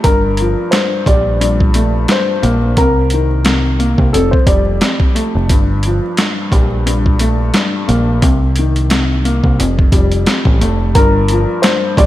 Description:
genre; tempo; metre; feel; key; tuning
hip hop, boom-bap hip-hop; 88 BPM; 4/4; swing 56% on 16ths; G minor; A4 = 440 Hz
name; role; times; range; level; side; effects
dark upright piano; melody; 0.0-5.0, 10.9-12.1 s; A4 to D5; -17 LUFS; left 1 dB; high-pass filter, low-pass filter, ping-pong delay
dark grand piano; accompaniment; 0.0-12.1 s; F2 to Bb3; -17 LUFS; left 1 dB; cassette tape, high-pass filter, low-pass filter
deep dub picked electric bass; bass; 0.0-12.1 s; F1 to C2; -15 LUFS; equal; none
boom bap sampler-style drum kit; drums; 0.0-12.1 s; hi-hat, kick drum, snare drum; -14 LUFS; equal; none
room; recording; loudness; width
light reverb, small room ambience; vinyl crackle; -11 LUFS; side -14 dB against mid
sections
0.0-11.0 A section; 11.0-12.1 B section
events
none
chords
0.0 Gm9; 2.8 Cm7; 4.1 Fadd9; 5.5 Gm9; 8.2 Cm7; 9.6 Fadd9; 11.0 Gm7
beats
| 0.04 0.72 1.41 2.09 | 2.77 3.45 4.13 4.82 | 5.50 6.18 6.86 7.54 | 8.22 8.91 9.59 10.27 | 10.95 11.63

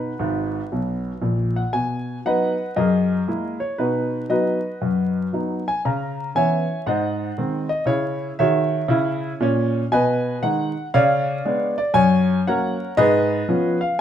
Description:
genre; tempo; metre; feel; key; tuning
jazz, stride piano; 117 BPM; 4/4; swing 65% on 8ths; B major; A4 = 440 Hz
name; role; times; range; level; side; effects
clear concert grand piano; solo; 0.0-14.0 s; G#1 to B5; -19 LUFS; equal; none
room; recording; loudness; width
wet studio reverb, RT60 0.8 s; minimal, uncompressed stereo recording, vinyl crackle; -19 LUFS; side -10 dB against mid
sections
0.0-1.7 A section; 1.7-14.0 B section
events
grand piano fill 0.2-1.7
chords
0.0 B5; 1.7 B; 2.8 F#13; 3.8 B; 5.8 C#m7; 6.9 G#7; 7.9 C#m; 9.9 G#m/B; 10.9 C#7b9; 12.0 F#; 13.0 C#7/G#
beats
0.21 0.72 1.23 | 1.74 2.25 2.77 3.28 | 3.79 4.30 4.81 5.32 | 5.83 6.34 6.85 7.37 | 7.88 8.39 8.90 9.41 | 9.92 10.43 10.94 11.45 | 11.96 12.47 12.98 13.49

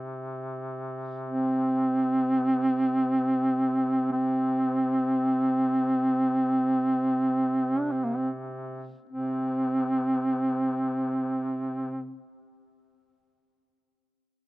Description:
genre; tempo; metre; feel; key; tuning
caucasian folk, Caucasian lament; free time; none; none; unclear; A4 = 440 Hz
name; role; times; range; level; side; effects
clear duduk; drone; 0.0-12.2 s; C3; -36 LUFS; equal; none
mellow duduk; melody; 1.3-12.2 s; Bb3 to D4; -24 LUFS; right 1 dB; none
room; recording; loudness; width
little or no reverb; dry, close 1970s-style studio recording; -24 LUFS; side -19 dB against mid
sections
0.0-9.1 A section; 9.1-13.9 B section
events
slowing down 1.3-9.1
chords
none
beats
free time

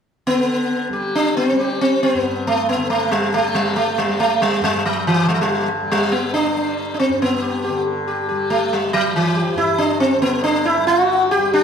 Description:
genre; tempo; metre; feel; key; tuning
indian classical; 138 BPM; 4/4; straight; G raga bilaval; A4 = 440 Hz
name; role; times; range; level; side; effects
sitar; melody; 0.3-11.6 s; E3 to G4; -16 LUFS; equal; none
tanpura; drone; 0.3-11.6 s; G2 to G3; -26 LUFS; left 2 dB; none
room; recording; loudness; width
wet recital hall reverb, RT60 1.3 s; none; -16 LUFS; side -7 dB against mid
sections
0.3-11.6 A section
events
none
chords
none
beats
| 0.27 0.70 1.14 1.57 | 2.01 2.44 2.88 3.31 | 3.74 4.18 4.61 5.04 | 5.48 5.91 6.35 6.78 | 7.21 7.65 8.08 8.51 | 8.94 9.38 9.81 10.24 | 10.67 11.10 11.54

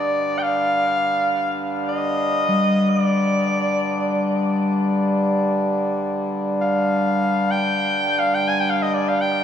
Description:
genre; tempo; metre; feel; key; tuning
world meditative, free-time meditation music; free time; none; none; unclear; A4 = 439 Hz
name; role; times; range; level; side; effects
bright alto saxophone; melody; 0.0-9.4 s; D5 to Ab5; -21 LUFS; equal; shimmer reverb, dub echo
hand-pumped harmonium; drone; 0.0-9.4 s; G2 to D3; -23 LUFS; equal; none
bronze singing bowl; texture; 2.5-9.4 s; G3; -23 LUFS; left 2 dB; none
room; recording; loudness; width
wet echo chamber reverb, RT60 1.5 s, studio reverb; echo-heavy mix, small room ambience; -18 LUFS; side -8 dB against mid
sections
0.0-9.4 A section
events
none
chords
none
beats
free time

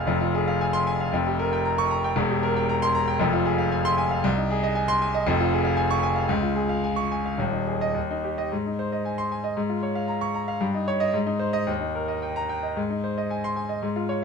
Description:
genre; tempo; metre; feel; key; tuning
classical, virtuoso piano study; 114 BPM; 2/4; rubato; F minor, Ab major from 4.2 s; A4 = 440 Hz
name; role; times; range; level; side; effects
bright baby grand piano; solo; 0.0-14.2 s; Eb1 to F6; -22 LUFS; equal; none
room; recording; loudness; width
light reverb; close, detailed microphones; -22 LUFS; side -5 dB against mid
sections
0.1-8.5 A section; 8.5-14.2 B section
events
none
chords
0.1 Fm; 1.1 Gm7b5/F; 2.2 C7/E; 3.2 Fm; 4.2 Ab/C; 5.3 Db/F; 6.3 Db; 7.4 Ab5/Eb; 8.0 Eb; 8.5 Ab; 9.6 Bbm7/Ab; 10.6 Eb7/G; 11.1 Ab; 11.7 Eb; 12.8 Ab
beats
| 0.07 0.61 | 1.14 1.66 | 2.17 2.68 | 3.20 3.72 | 4.24 4.76 | 5.27 5.78 | 6.30 6.84 | 7.39 7.95 | 8.52 9.05 | 9.57 10.09 | 10.61 11.14 | 11.68 12.22 | 12.77 13.31 | 13.84

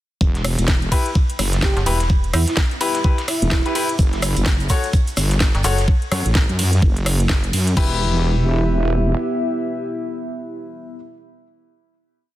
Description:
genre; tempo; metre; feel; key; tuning
bass house; 127 BPM; 4/4; swing 60% on 16ths; E dorian; A4 = 440 Hz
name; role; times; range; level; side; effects
dark analog pad; sustained chords; 1.1-11.0 s; G3 to E5; -26 LUFS; equal; chorus, phaser, sidechain pumping
wobble bass; bass; 0.2-9.1 s; E1 to F#2; -19 LUFS; equal; chorus, tube saturation, sidechain pumping
dusty soul sampler-style drum kit; drums; 0.2-5.9 s; hi-hat, snare drum; -32 LUFS; right 1 dB; high-pass filter on hats, high-pass filter on snare, high-pass filter on room
electronic kick drum; drums; 0.2-7.9 s; none; -17 LUFS; equal; none
garage drum kit; drums; 0.3-7.9 s; crash cymbal, hi-hat, ride cymbal, rim click, snare drum; -24 LUFS; equal; none
bright grand piano; stabs; 0.9-11.0 s; E4 to C#5; -26 LUFS; left 5 dB; vintage 12-bit sampler grit, sidechain pumping, tape echo
breathy flute-like synth lead; melody; 1.6-4.0 s; E4 to G4; -28 LUFS; right 3 dB; ensemble chorus, tape echo
metallic FM bass; bass; 1.8-2.5, 5.5-5.9 s; E1 to E2; -18 LUFS; equal; overdrive, sidechain pumping
tube shaker; percussion; 4.0-5.9 s; none; -32 LUFS; right 2 dB; none
room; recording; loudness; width
little or no reverb; dense, heavily limited modern master; -16 LUFS; side -14 dB against mid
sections
0.2-7.8 drop; 7.8-11.5 final chord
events
drop 0.2-7.8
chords
0.2 Em; 4.0 F#m; 7.8 Em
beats
| 0.21 0.68 1.15 1.63 | 2.10 2.57 3.04 3.52 | 3.99 4.46 4.93 5.41 | 5.88 6.35 6.82 7.30 | 7.77 8.24 8.71 9.19 | 9.66 10.13 10.60

